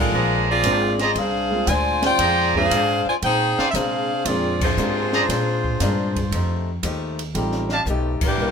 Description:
jazz, big band swing; 116 BPM; 4/4; swing 69% on 8ths; A4 = 440 Hz
bright saxophone section; melody; 0.0-8.5 s; E3 to Ab5; -21 LUFS; left 1 dB
warm concert grand piano; accompaniment; 0.0-7.7 s; G3 to G4; -27 LUFS; right 2 dB
upright bass; bass; 0.0-8.5 s; Ab1 to C3; -25 LUFS; equal
picked acoustic archtop guitar; accompaniment; 0.1-8.5 s; Bb2 to G4; -30 LUFS; left 4 dB
brilliant trumpet section; stabs; 0.1-7.8 s; G4 to Bb5; -23 LUFS; right 4 dB
open jazz drum kit; drums; 0.6-8.3 s; crash cymbal, hi-hat, kick drum, ride cymbal, snare drum; -27 LUFS; right 1 dB
moderate club reverb, RT60 0.6 s; minimal, uncompressed stereo recording; -18 LUFS; side -6 dB against mid
0.0-8.5 A section
band accent 4.5, 8.1; drum fill 7.9-8.4
0.1 Bb9; 6.3 F9

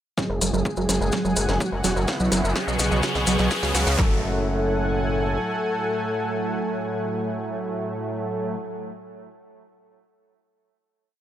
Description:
melodic techno; 126 BPM; 4/4; straight; F# minor; A4 = 440 Hz
fat analog lead; melody; 0.2-8.6 s; E4 to A4; -29 LUFS; left 1 dB; sidechain pumping, digital delay
lush unison pad; sustained chords; 0.6-8.6 s; G#3 to C#6; -33 LUFS; equal; chorus, sidechain pumping
tight sequenced synth; arpeggios; 0.2-4.2 s; F#3; -27 LUFS; right 3 dB; chorus, cassette tape, sidechain pumping, digital delay
analog synth brass; stabs; 0.2-8.6 s; A2 to B3; -29 LUFS; right 2 dB; chorus, sidechain pumping, digital delay
techno drum kit; drums; 0.2-4.1 s; handclaps, kick drum, snare drum; -26 LUFS; equal; high-pass filter on kick, high-pass filter on snare, high-pass filter on room
techno drum kit; drums; 0.2-4.0 s; hi-hat, snare drum, toms; -29 LUFS; left 1 dB; high-pass filter on snare, sidechain pumping on hats, high-pass filter on hats, sidechain pumping on toms, high-pass filter on toms, high-pass filter on room
maracas; percussion; 0.2-4.0 s; -32 LUFS; left 3 dB
riser; sound effects; 1.7-4.0 s; -31 LUFS; left 1 dB
gritty driven synth bass; bass; 0.3-5.4 s; E1 to C#2; -24 LUFS; equal; sidechain pumping
light reverb, digital ambience; -21 LUFS; side -11 dB against mid
0.2-4.0 build; 4.0-7.8 final chord
build-up 0.2-4.0; drum fill 0.2-4.0; filter sweep on analog polysynth 0.2-4.0; riser 1.7-4.0
0.2 F#madd9; 2.1 Bsus2; 4.0 F#madd9

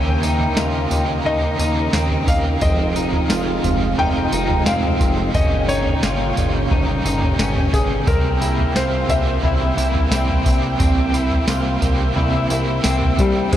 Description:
dream pop; 88 BPM; 4/4; straight; A4 = 440 Hz
felt-muted upright piano; melody; 0.0-13.6 s; G3 to G5; -25 LUFS; left 2 dB; tape echo
overdriven electric guitar; accompaniment; 0.0-13.6 s; F2 to G4; -26 LUFS; right 4 dB; tremolo, ensemble chorus
tonewheel organ; sustained chords; 0.0-13.6 s; Bb2 to Eb6; -24 LUFS; equal; lush chorus
electric guitar at the edge of break-up; arpeggios; 0.0-13.6 s; C4 to F4; -25 LUFS; left 2 dB; ensemble chorus, tape echo
chorused synth bass; bass; 0.0-13.6 s; F1 to Eb2; -22 LUFS; equal
worn celesta; texture; 0.0-0.2, 4.3-13.6 s; Bb4 to G5; -34 LUFS; right 1 dB
soft vintage rhythm box; drums; 0.2-13.6 s; crash cymbal, kick drum, snare drum, tambourine, toms; -21 LUFS; equal
moderate huge ambient reverb, RT60 7.7 s; dreamy mix soaked in reverb; -16 LUFS; side -11 dB against mid
0.0-13.5 A section
0.0 Eb7; 2.6 Fm7; 5.3 Gdim; 8.1 C7

